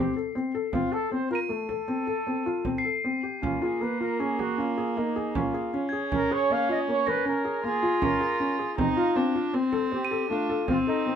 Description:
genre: contemporary instrumental, chamber music in an uneven meter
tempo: 157 BPM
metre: 7/4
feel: straight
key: unclear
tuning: A4 = 441 Hz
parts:
  - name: warm flugelhorn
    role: melody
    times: 0.0-11.2 s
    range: Eb4 to E#5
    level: -30 LUFS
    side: right 2 dB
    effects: none
  - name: felt-muted upright piano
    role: arpeggios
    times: 0.0-11.2 s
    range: A3 to A#4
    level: -28 LUFS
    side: left 3 dB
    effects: none
  - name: frame drum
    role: percussion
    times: 0.4-11.2 s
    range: none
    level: -34 LUFS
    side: right 6 dB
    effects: none
  - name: crotales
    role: texture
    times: 1.4-10.6 s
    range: G#6 to Eb7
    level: -36 LUFS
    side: left 2 dB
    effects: none
  - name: warm viola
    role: second line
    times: 3.4-11.2 s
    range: A#3 to E#4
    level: -30 LUFS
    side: right 3 dB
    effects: none
room: moderate studio reverb, RT60 0.7 s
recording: none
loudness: -24 LUFS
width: side -8 dB against mid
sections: 0.0-11.2 A section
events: none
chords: 0.0 F7 (rootless); 3.4 A#m7; 8.8 F7

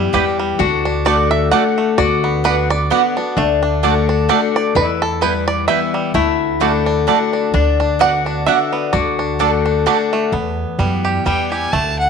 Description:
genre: bluegrass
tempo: 129 BPM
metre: 3/4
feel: swing 55% on 8ths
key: D major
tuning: A4 = 440 Hz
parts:
  - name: bluegrass banjo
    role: melody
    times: 0.0-12.1 s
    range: G3 to F#5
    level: -19 LUFS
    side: right 4 dB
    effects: none
  - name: lap resonator guitar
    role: second line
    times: 0.0-10.1 s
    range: D4 to G4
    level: -22 LUFS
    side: left 11 dB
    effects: none
  - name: picked steel-string acoustic guitar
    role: accompaniment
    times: 0.0-12.1 s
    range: E2 to F#4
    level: -20 LUFS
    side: left 10 dB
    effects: none
  - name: upright bass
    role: bass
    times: 0.0-12.1 s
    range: D2 to F#2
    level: -20 LUFS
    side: right 1 dB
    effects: none
  - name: mandolin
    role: stabs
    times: 0.1-10.0 s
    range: A3 to A5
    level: -20 LUFS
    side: right 12 dB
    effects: none
  - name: rich fiddle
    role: melody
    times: 11.3-12.1 s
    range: F#5 to A5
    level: -18 LUFS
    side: equal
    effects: none
room: moderate echo chamber reverb, RT60 2.1 s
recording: 1960s-style stereo with parts hard left and right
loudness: -14 LUFS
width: side -6 dB against mid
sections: 0.0-10.3 A section; 10.3-12.1 B section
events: five-string banjo solo 0.0-10.3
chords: 0.0 Em; 0.6 D; 2.0 Bm/D; 3.4 D; 4.8 Em; 6.1 D; 7.5 Bm/D; 8.9 D; 10.3 Em

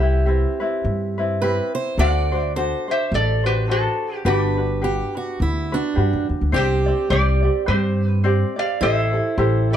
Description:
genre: Hawaiian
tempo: 105 BPM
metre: 4/4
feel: swing 58% on 8ths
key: G major, C major from 6.5 s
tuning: A4 = 440 Hz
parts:
  - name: lap resonator guitar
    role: melody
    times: 0.0-9.8 s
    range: D4 to F#5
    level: -24 LUFS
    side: right 1 dB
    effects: none
  - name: picked steel-string acoustic guitar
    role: second line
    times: 0.0-9.8 s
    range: D4 to D5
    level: -26 LUFS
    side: right 5 dB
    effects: none
  - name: ukulele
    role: accompaniment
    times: 0.0-9.8 s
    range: C4 to D5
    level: -24 LUFS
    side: left 2 dB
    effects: none
  - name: upright bass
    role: bass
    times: 0.0-9.7 s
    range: G1 to G2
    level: -20 LUFS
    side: equal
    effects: none
room: light reverb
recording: dark, warm production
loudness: -18 LUFS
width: side -10 dB against mid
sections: 0.0-6.5 A section; 6.5-9.8 B section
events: none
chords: 0.0 Cmaj7; 2.0 D7; 4.3 Gmaj7; 6.5 Csus2; 8.8 Am7

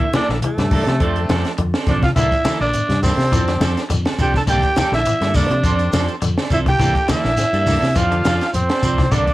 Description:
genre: afrobeat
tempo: 104 BPM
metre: 4/4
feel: swing 54% on 16ths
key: unclear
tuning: A4 = 440 Hz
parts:
  - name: growling trumpet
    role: melody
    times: 0.0-9.3 s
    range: A4 to A5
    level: -21 LUFS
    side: right 1 dB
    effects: cassette tape
  - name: bright alto saxophone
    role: second line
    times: 0.0-9.3 s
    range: A3 to A4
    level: -24 LUFS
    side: right 2 dB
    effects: none
  - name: semi-hollow electric guitar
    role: arpeggios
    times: 0.0-9.3 s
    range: D3 to F3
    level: -28 LUFS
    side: left 5 dB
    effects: none
  - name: clean electric guitar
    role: stabs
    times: 0.0-9.3 s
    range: E3 to A4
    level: -25 LUFS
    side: right 5 dB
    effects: lush chorus, tape echo
  - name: compact cocktail drum kit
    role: drums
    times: 0.0-9.3 s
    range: hi-hat, kick drum, snare drum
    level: -22 LUFS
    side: equal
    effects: cassette tape
  - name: overdriven combo organ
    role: accompaniment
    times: 0.1-9.3 s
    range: Bb3 to A4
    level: -31 LUFS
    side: left 5 dB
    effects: none
  - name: fingered electric bass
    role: bass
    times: 0.1-9.3 s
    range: A1 to C3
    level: -21 LUFS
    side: equal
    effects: none
  - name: congas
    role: percussion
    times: 0.1-9.1 s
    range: none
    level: -23 LUFS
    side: left 1 dB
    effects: none
  - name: shekere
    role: percussion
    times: 2.2-9.3 s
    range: none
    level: -27 LUFS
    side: left 2 dB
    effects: none
room: light reverb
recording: home recording on cassette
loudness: -15 LUFS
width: side -17 dB against mid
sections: 0.0-9.3 A section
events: none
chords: 0.0 C13; 1.0 F6; 2.2 C13; 3.3 F6; 4.5 C13; 5.6 F6; 6.8 C13; 8.0 F6

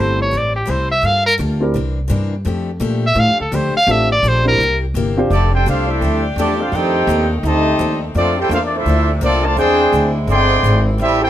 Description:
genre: jazz, big band swing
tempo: 169 BPM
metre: 4/4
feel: swing 63% on 8ths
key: F major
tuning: A4 = 441 Hz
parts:
  - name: bright trumpet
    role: melody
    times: 0.0-4.8 s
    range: G4 to F5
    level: -15 LUFS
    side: equal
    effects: none
  - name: dark grand piano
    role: accompaniment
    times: 0.0-1.7, 3.9-5.3 s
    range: A3 to C5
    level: -20 LUFS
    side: right 1 dB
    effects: none
  - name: picked steel-string acoustic guitar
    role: accompaniment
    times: 0.0-11.2 s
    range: F2 to C5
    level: -25 LUFS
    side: left 5 dB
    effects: none
  - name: upright bass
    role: bass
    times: 0.0-11.3 s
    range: F1 to Bb2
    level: -18 LUFS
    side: equal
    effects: none
  - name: clear trumpet section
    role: melody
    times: 5.3-11.3 s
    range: C4 to B#5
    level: -18 LUFS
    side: right 1 dB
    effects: none
  - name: dark trombone section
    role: second line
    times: 5.3-11.3 s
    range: C3 to G#4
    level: -19 LUFS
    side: equal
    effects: none
  - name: warm saxophone section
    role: sustained chords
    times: 5.3-11.3 s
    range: Bb2 to G4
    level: -26 LUFS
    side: left 1 dB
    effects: none
room: light reverb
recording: close, detailed microphones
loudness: -13 LUFS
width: side -12 dB against mid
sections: 0.0-5.3 A section; 5.3-11.3 B section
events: trumpet solo 0.0-5.3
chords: 0.0 Am7; 1.0 Gm9; 1.7 C9; 2.5 F69; 4.6 C7; 5.3 F69; 6.7 F13; 8.2 Bbmaj9; 9.6 E7alt

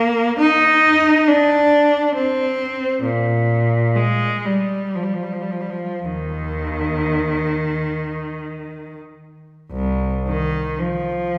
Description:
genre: classical, free, expressive piece for unaccompanied cello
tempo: 35-70 BPM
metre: 3/4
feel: rubato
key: Eb major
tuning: A4 = 440 Hz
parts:
  - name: rich cello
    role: solo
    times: 0.0-11.4 s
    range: C2 to Eb4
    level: -19 LUFS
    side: equal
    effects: none
room: wet recital hall reverb, RT60 1.6 s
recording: recorded in a church or concert hall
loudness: -19 LUFS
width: mono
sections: 0.0-9.7 A section; 9.7-11.4 B section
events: none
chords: none

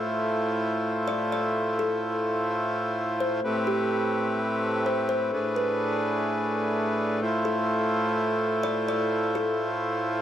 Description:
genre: hip hop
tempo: 127 BPM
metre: 4/4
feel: half-time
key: A minor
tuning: A4 = 440 Hz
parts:
  - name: kalimba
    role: melody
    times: 0.0-10.2 s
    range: G4 to D5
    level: -32 LUFS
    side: left 2 dB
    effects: tape echo
  - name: hand-pumped harmonium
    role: sustained chords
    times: 0.0-10.2 s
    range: A2 to C5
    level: -25 LUFS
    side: equal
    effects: none
room: light reverb, studio ambience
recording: dry, gritty hardware recording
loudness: -24 LUFS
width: side -10 dB against mid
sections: 0.0-3.4 A section; 3.4-10.2 B section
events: none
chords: 0.0 Dm9/A (rootless); 3.4 Am7; 5.3 Asus24; 7.2 Dm9/A (rootless)

